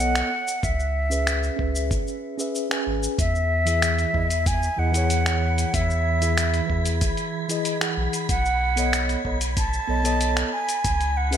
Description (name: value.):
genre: sunset chillout.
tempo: 94 BPM.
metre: 4/4.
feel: straight.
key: E major.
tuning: A4 = 440 Hz.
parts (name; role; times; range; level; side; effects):
breathy mellow concert flute; melody; 0.0-11.4 s; E5 to A5; -26 LUFS; right 2 dB; ping-pong delay.
mellow tine electric piano; accompaniment; 0.0-11.4 s; E3 to G#5; -28 LUFS; moving between left 4 dB and right 3 dB; slow stereo tremolo, auto-pan, ping-pong delay.
round analog bass; bass; 0.0-11.4 s; G#1 to E2; -24 LUFS; equal; none.
dusty soul sampler-style drum kit; drums; 0.2-11.4 s; cabasa, finger snaps, hi-hat; -28 LUFS; left 1 dB; gated reverb.
electronic kick drum; drums; 0.6-11.0 s; none; -27 LUFS; equal; none.
wind-like tuned noise texture; texture; 4.1-11.4 s; B5 to G#6; -34 LUFS; right 1 dB; built-in reverb, lush chorus.
room: light reverb.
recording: bright 1980s-style digital production.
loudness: -21 LUFS.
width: side -9 dB against mid.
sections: 0.0-11.4 A section.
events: none.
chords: 0.3 C#m7; 3.2 E; 8.3 B9; 10.5 C#7(no3).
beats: | 0.63 1.27 1.91 2.55 | 3.19 3.82 4.46 5.10 | 5.74 6.38 7.02 7.65 | 8.29 8.93 9.57 10.21 | 10.85.